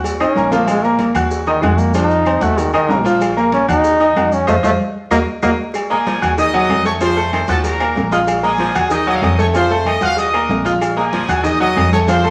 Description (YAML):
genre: latin, salsa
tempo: 190 BPM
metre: 4/4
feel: straight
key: unclear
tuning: A4 = 440 Hz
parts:
  - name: bright concert grand piano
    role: accompaniment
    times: 0.0-12.3 s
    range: F3 to Gb6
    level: -20 LUFS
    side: equal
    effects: none
  - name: upright bass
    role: bass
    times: 0.0-12.3 s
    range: Bb1 to F2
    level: -24 LUFS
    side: equal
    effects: none
  - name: agogo bells and timbales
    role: percussion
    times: 0.0-12.2 s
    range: none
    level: -26 LUFS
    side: equal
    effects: none
  - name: congas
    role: percussion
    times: 0.0-12.3 s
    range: none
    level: -27 LUFS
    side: equal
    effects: none
  - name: cowbell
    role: percussion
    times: 0.0-12.2 s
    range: none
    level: -31 LUFS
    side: equal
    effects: none
  - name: maracas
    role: percussion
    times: 0.1-12.3 s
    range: none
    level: -40 LUFS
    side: equal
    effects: none
  - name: bright trombone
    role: melody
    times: 0.2-5.5 s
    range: Eb3 to Eb4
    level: -19 LUFS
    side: equal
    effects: none
  - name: claves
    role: percussion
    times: 0.2-11.9 s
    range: none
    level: -36 LUFS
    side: equal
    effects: none
  - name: brilliant trumpet section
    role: melody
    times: 5.9-12.3 s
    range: Ab4 to Eb6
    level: -22 LUFS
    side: equal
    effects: none
  - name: bright baritone saxophone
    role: second line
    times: 5.9-12.0 s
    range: Eb3 to Ab3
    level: -28 LUFS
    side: equal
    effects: none
room: wet large studio reverb, RT60 1.0 s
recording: vinyl crackle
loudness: -15 LUFS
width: mono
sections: 0.0-5.7 A section; 5.7-12.3 B section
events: trombone solo 0.0-5.7; drum fill 0.2-0.7, 5.0-5.7; band accent 4.5-5.7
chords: 0.0 Ebm; 0.7 Bb5; 1.3 Ebm; 1.9 F5; 2.6 Ebm; 3.2 Bb5; 3.8 Ebm; 4.5 F7; 5.1 Ebm; 7.6 Bb5; 8.9 Ebm; 10.2 Bb5; 11.4 Ebm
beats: 0.05 0.36 | 0.68 0.99 1.31 1.63 | 1.94 2.26 2.58 2.89 | 3.21 3.53 3.84 4.16 | 4.48 4.79 5.11 5.43 | 5.75 6.06 6.38 6.70 | 7.01 7.33 7.64 7.96 | 8.28 8.60 8.91 9.23 | 9.54 9.86 10.18 10.49 | 10.81 11.13 11.45 11.76 | 12.08